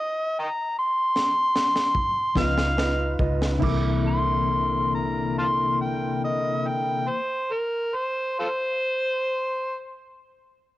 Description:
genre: slow blues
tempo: 46-52 BPM (dotted quarters)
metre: 12/8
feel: straight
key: C mixolydian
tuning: A4 = 438 Hz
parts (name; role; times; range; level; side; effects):
- overdriven harmonica; melody; 0.0-10.0 s; F4 to C6; -24 LUFS; equal; none
- crunchy breakbeat drum kit; drums; 1.2-3.8 s; crash cymbal, kick drum, snare drum; -28 LUFS; equal; cassette tape
- mellow electric guitar; accompaniment; 2.4-7.2 s; C3 to Eb4; -28 LUFS; left 6 dB; harmonic tremolo, cassette tape
- warm upright piano; accompaniment; 2.4-7.0 s; E4 to D6; -32 LUFS; right 6 dB; cassette tape
- tonewheel organ; sustained chords; 2.4-7.1 s; D3 to Cb5; -32 LUFS; right 1 dB; overdrive, stopped rotary speaker, cassette tape
- vintage muted fingered electric bass; bass; 2.4-7.0 s; C2 to Db2; -27 LUFS; equal; none
room: moderate studio reverb, RT60 0.5 s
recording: home recording on cassette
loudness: -22 LUFS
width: side -16 dB against mid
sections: 0.0-3.6 A section; 3.6-8.8 B section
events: slowing down 0.0-3.6; harmonica solo 0.0-3.6; stop 0.0-2.4; drum fill 1.1-3.6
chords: 0.0 N.C.; 2.4 Db9; 3.6 C9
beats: 1.15 2.36 | 3.62 4.92 6.21 7.51

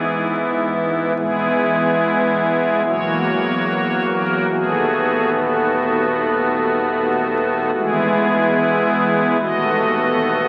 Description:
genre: classical, chorale-style piece for pipe organ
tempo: 73 BPM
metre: 4/4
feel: rubato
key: E major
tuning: A4 = 440 Hz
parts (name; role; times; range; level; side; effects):
- pipe organ, strings celeste; solo; 0.0-10.5 s; D#1 to D#5; -18 LUFS; equal; none
room: wet church reverb, RT60 4.0 s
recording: very old 78 rpm record, vinyl crackle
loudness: -18 LUFS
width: mono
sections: 0.0-1.2 A section; 1.2-10.5 A section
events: none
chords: 0.0 E/G#; 1.2 E; 2.9 F#7/E; 4.5 B7/D#; 7.7 E; 9.4 B7/D#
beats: 0.31 | 1.17 2.00 2.86 3.69 | 4.50 5.32 6.13 6.93 | 7.75 8.57 9.41 10.22

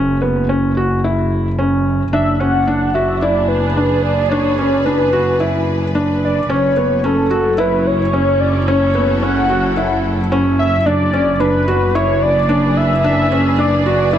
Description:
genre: piano and strings electronica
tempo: 110 BPM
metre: 4/4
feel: straight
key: unclear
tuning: A4 = 439 Hz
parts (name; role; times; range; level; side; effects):
- felt-muted upright piano; riff; 0.0-14.2 s; B3 to F#4; -18 LUFS; equal; low-pass filter, ping-pong delay
- clear chamber double bass section; bass; 0.0-14.2 s; F#1; -18 LUFS; equal; none
- warm velvety synth lead; melody; 2.1-14.2 s; A4 to F#5; -17 LUFS; equal; chorus, cassette tape
- muted symphonic string section; sustained chords; 2.1-14.2 s; F#3 to B4; -23 LUFS; equal; none
room: moderate echo chamber reverb, RT60 2.4 s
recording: none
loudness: -13 LUFS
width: side -10 dB against mid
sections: 0.0-14.2 A section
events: none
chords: 0.0 F#5; 2.1 E7/F#; 6.5 F#m7; 10.9 E7/F#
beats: 0.50 1.04 1.59 | 2.13 2.68 3.22 3.77 | 4.32 4.86 5.41 5.95 | 6.50 7.04 7.59 8.13 | 8.68 9.22 9.77 10.31 | 10.86 11.41 11.95 12.50 | 13.04 13.59 14.13

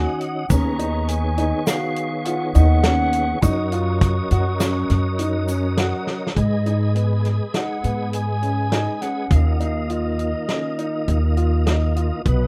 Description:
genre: progressive instrumental, band music in an uneven meter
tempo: 102 BPM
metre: 5/4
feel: straight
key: G# dorian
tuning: A4 = 440 Hz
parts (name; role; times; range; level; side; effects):
- baroque flute; melody; 0.0-12.5 s; B4 to C#6; -30 LUFS; equal; delay
- tonewheel organ; accompaniment; 0.0-12.5 s; B2 to D#5; -30 LUFS; equal; chorus vibrato, fast rotary speaker
- warm grand piano; arpeggios; 0.0-12.2 s; B3 to F#4; -29 LUFS; equal; delay
- upright bass; bass; 0.0-12.5 s; B1 to G#2; -22 LUFS; equal; none
- warm soul drum kit; drums; 0.2-12.4 s; hi-hat, kick drum, snare drum; -25 LUFS; equal; none
- tube shaker; percussion; 0.5-5.8 s; none; -39 LUFS; equal; none
room: studio ambience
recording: rough home demo mix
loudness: -21 LUFS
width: mono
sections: 0.0-6.4 A section; 6.4-12.5 B section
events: drum fill 6.1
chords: 0.0 D#m7; 0.5 B6/D#; 3.4 F#6; 6.4 G#m; 9.3 D#sus2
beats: | 0.50 1.09 1.67 2.26 2.84 | 3.43 4.01 4.60 5.19 5.78 | 6.36 6.95 7.54 8.13 8.72 | 9.31 9.90 10.49 11.08 11.67 | 12.26

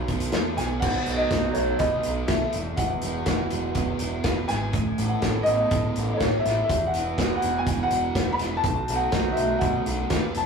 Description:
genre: indie rock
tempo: 123 BPM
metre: 4/4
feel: straight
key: unclear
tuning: A4 = 439 Hz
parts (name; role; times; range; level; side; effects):
- warm upright piano; melody; 0.0-10.5 s; C#5 to B5; -26 LUFS; left 1 dB; none
- raw garage guitar; riff; 0.0-10.5 s; B2 to C#5; -31 LUFS; equal; overdrive
- growling picked electric bass; bass; 0.0-10.5 s; E1 to B2; -30 LUFS; right 1 dB; overdrive
- loose indie drum kit; drums; 0.1-10.5 s; crash cymbal, hi-hat, kick drum, snare drum; -27 LUFS; equal; none
- twangy electric guitar; riff; 0.8-10.5 s; E3 to C#5; -32 LUFS; right 6 dB; none
room: moderate small room reverb, RT60 0.5 s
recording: rough rehearsal-room recording, tube saturation, studio ambience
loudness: -22 LUFS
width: side -5 dB against mid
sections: 0.8-10.5 A section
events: none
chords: 0.0 B7; 2.5 Esus2; 4.7 Aadd9; 6.7 Esus2; 8.6 B7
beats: 0.34 | 0.82 1.31 1.80 2.29 | 2.78 3.27 3.75 4.24 | 4.73 5.22 5.71 6.20 | 6.69 7.18 7.67 8.16 | 8.64 9.13 9.62 10.12

